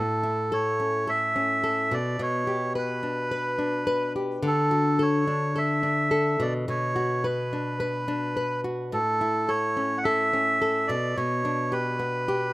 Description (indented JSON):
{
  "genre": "pop",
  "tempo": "107 BPM",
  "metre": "4/4",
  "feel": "straight",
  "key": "A mixolydian",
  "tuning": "A4 = 439 Hz",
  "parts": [
    { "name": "melodica", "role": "melody", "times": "0.0-12.5 s", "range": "A4 to F#5", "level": "-26 LUFS", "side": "right 1 dB", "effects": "slapback echo" },
    { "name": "flamenco guitar", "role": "accompaniment", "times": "0.0-12.5 s", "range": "A2 to B4", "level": "-26 LUFS", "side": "left 1 dB", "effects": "slapback echo" }
  ],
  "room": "little or no reverb",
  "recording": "recorded outdoors, with no room sound",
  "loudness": "-23 LUFS",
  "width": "side -19 dB against mid",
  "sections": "0.0-12.5 A section",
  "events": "none",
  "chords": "0.0 A; 1.9 G/B; 4.4 D; 6.4 Bm; 8.9 A; 10.9 G/B",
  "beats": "0.52 1.08 1.64 | 2.20 2.76 3.32 3.88 | 4.44 5.00 5.56 6.12 | 6.68 7.24 7.80 8.36 | 8.92 9.48 10.04 10.60 | 11.16 11.72 12.28"
}